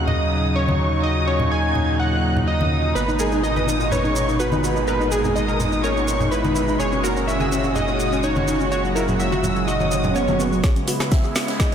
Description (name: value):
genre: progressive house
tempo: 125 BPM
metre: 4/4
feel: straight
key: unclear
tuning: A4 = 439 Hz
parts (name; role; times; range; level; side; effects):
- plucky unison lead; melody; 0.0-11.7 s; G#4 to G#5; -25 LUFS; equal; cassette tape, analog delay
- dark studio violin section; second line; 0.0-11.7 s; G#5 to G#6; -28 LUFS; equal; vintage 12-bit sampler grit, sidechain pumping, low-pass filter, analog delay
- supersaw pad; sustained chords; 0.0-11.7 s; A#2 to F#4; -24 LUFS; right 1 dB; sidechain pumping
- saturated sub bass; bass; 0.0-10.6 s; F#1 to D#2; -25 LUFS; equal; sidechain pumping
- open jazz drum kit; drums; 0.1-11.7 s; hi-hat, shaker, snare drum; -36 LUFS; right 2 dB; none
- congas; percussion; 0.1-10.4 s; none; -28 LUFS; left 1 dB; sidechain pumping on perc
- wide unison pluck; arpeggios; 3.0-11.7 s; F#3 to B4; -24 LUFS; equal; sidechain pumping, analog delay
- maracas; percussion; 3.0-11.7 s; none; -34 LUFS; right 4 dB; none
- swell and riser; sound effects; 9.9-11.7 s; none; -29 LUFS; right 2 dB; none
- deep house drum kit; drums; 10.6-11.7 s; hi-hat, rim click, snare drum; -25 LUFS; equal; sidechain pumping on hats
- electronic kick drum; drums; 10.6-11.7 s; none; -18 LUFS; equal; none
room: moderate lush hall reverb, RT60 1.7 s, small room ambience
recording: dreamy mix soaked in reverb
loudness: -18 LUFS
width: side -8 dB against mid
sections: 0.0-10.6 A section; 10.6-11.7 B section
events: swell 9.9-10.6; build-up 10.6-11.7; drum fill 10.6-11.7; filter sweep on violin section 10.6-11.7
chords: 0.0 D#m7; 3.0 G#madd9; 6.8 F#add9; 10.6 C#m7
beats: 0.08 0.56 | 1.04 1.52 2.00 2.48 | 2.96 3.44 3.92 4.40 | 4.88 5.36 5.84 6.32 | 6.80 7.28 7.76 8.24 | 8.72 9.20 9.68 10.16 | 10.64 11.12 11.60